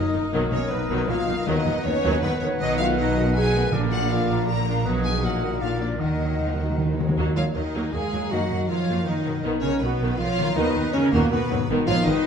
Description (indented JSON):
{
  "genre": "classical",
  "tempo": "159 BPM",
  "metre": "3/4",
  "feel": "straight",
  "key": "Eb minor",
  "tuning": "A4 = 440 Hz",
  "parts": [
    { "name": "warm symphonic violin section", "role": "melody", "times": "0.0-12.3 s", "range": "Bb4 to Bb5", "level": "-32 LUFS", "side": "left 2 dB", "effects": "none" },
    { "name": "clear oboe", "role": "second line", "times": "0.0-7.0 s", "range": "D5 to Gb5", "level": "-36 LUFS", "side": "right 1 dB", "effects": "none" },
    { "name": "large flute ensemble", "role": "second line", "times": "0.0-12.3 s", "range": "F#4 to Bb5", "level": "-32 LUFS", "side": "equal", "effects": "none" },
    { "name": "rich symphonic violin section", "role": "second line", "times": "0.0-12.3 s", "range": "A3 to Ab4", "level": "-33 LUFS", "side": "left 1 dB", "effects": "none" },
    { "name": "warm clarinet", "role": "second line", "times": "0.0-12.3 s", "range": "Bb3 to B4", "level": "-31 LUFS", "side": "equal", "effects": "none" },
    { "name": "rich symphonic viola section", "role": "accompaniment", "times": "0.0-12.1 s", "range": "D3 to D4", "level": "-30 LUFS", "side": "right 1 dB", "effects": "none" },
    { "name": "warm French horn section", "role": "sustained chords", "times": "0.0-12.3 s", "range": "Bb3 to Bb4", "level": "-30 LUFS", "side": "left 2 dB", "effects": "none" },
    { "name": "concert harp", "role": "arpeggios", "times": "0.0-12.3 s", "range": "Gb2 to D#5", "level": "-30 LUFS", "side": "left 10 dB", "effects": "none" },
    { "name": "rich symphonic cello section", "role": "bass", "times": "0.0-12.3 s", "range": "D#2 to Ab3", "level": "-29 LUFS", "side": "right 3 dB", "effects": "none" },
    { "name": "rich symphonic double bass section", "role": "bass", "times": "0.0-12.1 s", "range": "Gb1 to Gb2", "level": "-28 LUFS", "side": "right 3 dB", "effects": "none" },
    { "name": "timpani", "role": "percussion", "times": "1.5-7.2, 10.6-11.1 s", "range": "Bb2 to D#3", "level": "-31 LUFS", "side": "right 1 dB", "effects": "none" }
  ],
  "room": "wet recital hall reverb, RT60 1.3 s",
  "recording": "dark, warm production",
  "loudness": "-21 LUFS",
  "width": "side -7 dB against mid",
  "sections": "0.0-7.2 A section; 7.2-12.3 A section",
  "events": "timpani fill 6.0-7.2",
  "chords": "0.3 Bmaj7; 1.5 B/D#; 2.6 B7; 3.7 Bb; 4.8 B; 5.2 Ebm/Bb; 5.6 Bb; 6.0 Ebm; 8.3 Ebm/Gb; 9.4 Bmaj7; 10.6 B/D#; 11.7 Abm"
}